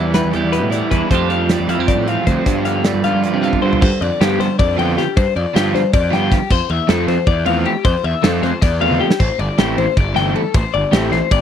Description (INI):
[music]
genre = math rock and midwest emo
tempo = 312 BPM (eighths)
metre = 7/8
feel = straight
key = unclear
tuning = A4 = 438 Hz
[part]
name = clean electric guitar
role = accompaniment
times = 0.0-5.2 s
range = E2 to G4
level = -22 LUFS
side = right 9 dB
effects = wide subtle chorus
[part]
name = twelve-string electric guitar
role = arpeggios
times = 0.0-11.4 s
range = G4 to G5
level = -20 LUFS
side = left 10 dB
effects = wide subtle chorus
[part]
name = crunchy overdriven guitar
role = riff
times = 0.0-11.2 s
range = G2 to F4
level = -20 LUFS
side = right 4 dB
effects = none
[part]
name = fuzz picked electric bass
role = bass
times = 0.0-11.4 s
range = G1 to C3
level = -20 LUFS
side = equal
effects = overdrive
[part]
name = loose indie drum kit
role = drums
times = 0.1-11.4 s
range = crash cymbal, hi-hat, kick drum, ride cymbal, snare drum, toms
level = -18 LUFS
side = right 1 dB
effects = none
[sound]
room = studio ambience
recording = dry, close 1970s-style studio recording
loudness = -14 LUFS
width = side -9 dB against mid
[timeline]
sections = 0.0-3.8 A section; 3.8-11.4 B section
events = drum fill 3.5, 8.9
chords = 0.0 Em7; 1.1 F69; 2.5 G7sus4; 6.5 Fmaj7; 9.2 Am7